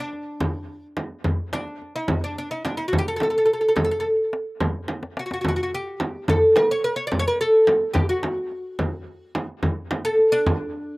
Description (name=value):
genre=Persian modal ensemble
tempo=72 BPM (dotted quarters)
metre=6/8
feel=straight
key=D dastgah chahargah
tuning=A4 = 440 Hz
part: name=oud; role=melody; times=0.0-11.0 s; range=D4 to D5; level=-21 LUFS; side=equal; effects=none
part: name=tombak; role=percussion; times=0.1-10.7 s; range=none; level=-27 LUFS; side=left 1 dB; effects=none
part: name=frame drum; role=percussion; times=0.4-10.6 s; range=none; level=-26 LUFS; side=right 1 dB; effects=none
room=little or no reverb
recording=recorded outdoors, with no room sound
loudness=-20 LUFS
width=side -22 dB against mid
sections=0.0-11.0 A section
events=drum fill 4.9-5.4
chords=none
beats=| 0.41 1.25 | 2.09 2.93 | 3.77 4.61 | 5.45 6.29 | 7.12 7.96 | 8.80 9.63 | 10.47